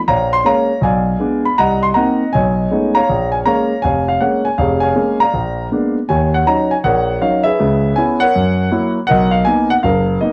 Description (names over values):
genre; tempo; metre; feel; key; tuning
solo jazz; 160 BPM; 4/4; swing 65% on 8ths; Bb minor, Eb minor from 6.1 s; A4 = 440 Hz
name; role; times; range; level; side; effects
warm grand piano; solo; 0.1-10.3 s; F1 to C6; -15 LUFS; equal; slapback echo
room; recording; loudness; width
moderate booth ambience, RT60 0.2 s; dry, close 1970s-style studio recording; -15 LUFS; mono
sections
0.0-6.1 A section; 6.1-10.3 B section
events
none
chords
0.1 Bbm7; 0.8 Bdim7; 1.6 Cm7b5; 2.3 B13; 3.1 Bbm7; 5.3 Bb7b9; 6.1 Ebm7; 7.6 Dbm7; 8.3 Gb7; 9.1 Bmaj7